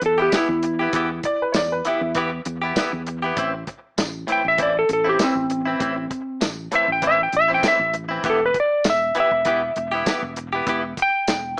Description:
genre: straight-eighth soul blues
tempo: 98 BPM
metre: 4/4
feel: straight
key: E minor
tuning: A4 = 442 Hz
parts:
  - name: clean lap steel guitar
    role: melody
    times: 0.0-11.6 s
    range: C4 to G5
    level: -19 LUFS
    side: equal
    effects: none
  - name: direct-recorded clean electric guitar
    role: stabs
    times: 0.0-11.6 s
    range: A2 to G4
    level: -24 LUFS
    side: equal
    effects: wide subtle chorus, slapback echo
  - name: fingered electric bass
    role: bass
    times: 0.0-11.5 s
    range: E1 to E2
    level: -31 LUFS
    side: equal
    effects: none
  - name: warm soul drum kit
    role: drums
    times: 0.0-11.4 s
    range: hi-hat, kick drum, snare drum, tambourine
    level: -24 LUFS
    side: equal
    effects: none
  - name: clear upright piano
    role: second line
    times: 1.3-2.2 s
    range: E4 to D5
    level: -22 LUFS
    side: equal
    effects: none
room: light reverb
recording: small speaker sound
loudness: -18 LUFS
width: side -34 dB against mid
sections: 0.0-11.6 A section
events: none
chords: 0.0 Em; 3.4 Am; 8.2 Em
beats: 0.33 | 0.94 1.54 2.15 2.76 | 3.37 3.98 4.59 5.20 | 5.81 6.42 7.02 7.63 | 8.24 8.85 9.46 10.07 | 10.68 11.29

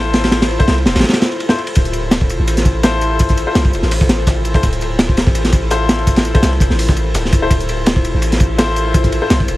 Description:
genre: drum and bass, jungle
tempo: 167 BPM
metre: 4/4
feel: swing 53% on 16ths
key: D minor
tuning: A4 = 440 Hz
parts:
  - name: airy breathy pad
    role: sustained chords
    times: 0.0-9.6 s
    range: E4 to C5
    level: -23 LUFS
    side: left 1 dB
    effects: chorus
  - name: warm concert grand piano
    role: stabs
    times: 0.0-9.4 s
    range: E4 to C5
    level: -20 LUFS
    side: left 3 dB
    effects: vintage 12-bit sampler grit, dub echo
  - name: long sustained 808-style bass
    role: bass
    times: 0.0-9.6 s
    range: D1 to C2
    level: -18 LUFS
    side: equal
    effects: none
  - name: crunchy breakbeat drum kit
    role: drums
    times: 0.1-9.6 s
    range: kick drum, ride cymbal, snare drum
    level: -14 LUFS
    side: equal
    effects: none
  - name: breakbeat sampler-style drum kit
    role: drums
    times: 1.8-9.6 s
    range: hi-hat, snare drum, tambourine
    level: -27 LUFS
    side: equal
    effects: high-pass filter on perc, high-pass filter on hats, high-pass filter on snare
room: small room ambience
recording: vinyl crackle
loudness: -12 LUFS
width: side -17 dB against mid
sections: 0.0-9.6 A section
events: break 1.0-1.8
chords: 0.0 Dm7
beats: | 0.32 0.68 1.04 1.40 | 1.76 2.12 2.48 2.83 | 3.19 3.55 3.91 4.27 | 4.63 4.99 5.35 5.71 | 6.07 6.43 6.79 7.15 | 7.51 7.87 8.22 8.58 | 8.94 9.30

